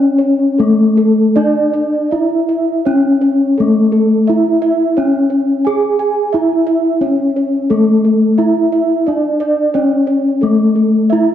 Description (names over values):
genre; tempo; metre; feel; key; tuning
gamelan; 87 BPM; 4/4; uneven beats; C# pelog; A4 = 441 Hz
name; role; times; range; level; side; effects
gamelan-type bronze metallophone; melody; 0.0-11.3 s; A3 to G#4; -11 LUFS; left 1 dB; none
gamelan-type bronze metallophone; arpeggios; 0.0-11.3 s; A4 to G#5; -19 LUFS; right 5 dB; tape echo
room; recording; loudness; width
wet recital hall reverb, RT60 1.4 s; dark, warm production; -11 LUFS; side -10 dB against mid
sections
0.0-5.0 A section; 5.0-11.3 B section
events
none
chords
none